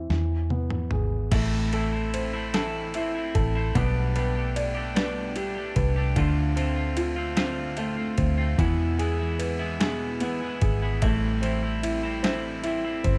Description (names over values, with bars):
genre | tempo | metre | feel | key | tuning
six-eight pop ballad | 50 BPM (dotted quarters) | 6/8 | straight | A minor | A4 = 440 Hz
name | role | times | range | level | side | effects
warm upright piano | accompaniment | 0.0-13.2 s | D3 to D5 | -32 LUFS | equal | none
vintage muted fingered electric bass | bass | 0.0-13.2 s | G1 to E2 | -30 LUFS | equal | none
boom bap sampler-style drum kit | drums | 0.1-13.2 s | crash cymbal, kick drum, ride cymbal, snare drum, toms | -33 LUFS | equal | overdrive
twelve-string electric guitar | arpeggios | 1.3-13.2 s | E2 to G4 | -35 LUFS | equal | none
room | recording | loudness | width
light reverb, digital ambience | none | -26 LUFS | mono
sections
0.0-1.3 A section; 1.3-13.2 B section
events
drum fill 0.1-1.3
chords
0.1 E; 1.3 Am; 3.8 Gadd9/B; 6.2 Dm7; 8.6 E; 11.0 Am7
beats
0.10 | 1.32 2.54 | 3.75 4.96 | 6.17 7.37 | 8.59 9.80 | 11.02 12.23